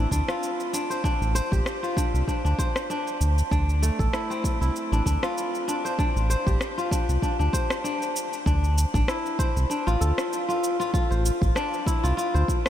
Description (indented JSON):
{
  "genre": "organic downtempo",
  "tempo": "97 BPM",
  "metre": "4/4",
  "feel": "swing 55% on 16ths",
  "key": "D minor",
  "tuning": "A4 = 440 Hz",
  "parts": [
    { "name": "kora", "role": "arpeggios", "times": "0.0-12.7 s", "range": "A3 to C5", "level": "-27 LUFS", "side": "left 1 dB", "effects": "diffuse ambient delay" },
    { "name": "round analog bass", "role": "bass", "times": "0.0-12.4 s", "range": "A1 to D2", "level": "-22 LUFS", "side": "equal", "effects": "tube saturation, sidechain pumping" },
    { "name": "electronic cabasa and rim click", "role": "drums", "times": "0.1-12.7 s", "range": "none", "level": "-33 LUFS", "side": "equal", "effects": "overdrive" },
    { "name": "electronic kick drum", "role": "drums", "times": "0.1-12.6 s", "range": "none", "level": "-26 LUFS", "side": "equal", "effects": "none" }
  ],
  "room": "moderate huge ambient reverb, RT60 7.7 s",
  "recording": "dreamy mix soaked in reverb",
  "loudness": "-22 LUFS",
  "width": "side -11 dB against mid",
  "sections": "0.0-8.5 A section; 8.5-12.7 B section",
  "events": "break 7.8-8.5",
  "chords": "0.0 Dm; 8.5 Amadd11"
}